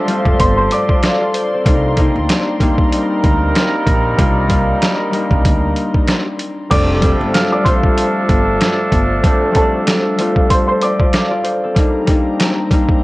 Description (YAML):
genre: hip hop, boom-bap hip-hop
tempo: 95 BPM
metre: 4/4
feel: swing 56% on 16ths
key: F mixolydian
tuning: A4 = 440 Hz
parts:
  - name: concert harp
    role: accompaniment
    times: 0.0-13.0 s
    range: G3 to F5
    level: -18 LUFS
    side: left 1 dB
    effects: high-pass filter, low-pass filter, cassette tape
  - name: warm studio string section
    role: sustained chords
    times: 0.0-6.7, 11.8-13.0 s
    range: C4 to C6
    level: -25 LUFS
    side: left 1 dB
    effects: high-pass filter, low-pass filter, cassette tape
  - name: warm horn section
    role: stabs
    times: 0.0-11.4 s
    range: F3 to Bb4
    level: -20 LUFS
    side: right 1 dB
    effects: high-pass filter, low-pass filter, cassette tape, analog delay
  - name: dusty soul sampler-style drum kit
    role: drums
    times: 0.1-13.0 s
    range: crash cymbal, hi-hat, kick drum, snare drum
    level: -15 LUFS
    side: equal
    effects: cassette tape
  - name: upright bass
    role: bass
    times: 0.3-9.2 s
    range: F1 to Eb2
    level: -19 LUFS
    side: equal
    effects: none
  - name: warm upright piano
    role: melody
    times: 0.4-1.6, 6.7-11.7 s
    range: A4 to F6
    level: -19 LUFS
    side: equal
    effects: high-pass filter, low-pass filter, cassette tape, analog delay
room: light reverb, studio reverb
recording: home recording on cassette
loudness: -12 LUFS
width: side -19 dB against mid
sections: 0.0-6.7 A section; 6.7-13.0 A section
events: none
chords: 0.0 F6; 1.7 Cm9; 6.7 F6; 11.8 Cm9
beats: 0.40 1.03 | 1.66 2.29 2.92 3.55 | 4.18 4.82 5.45 6.08 | 6.71 7.34 7.97 8.61 | 9.24 9.87 10.50 11.13 | 11.76 12.39 13.03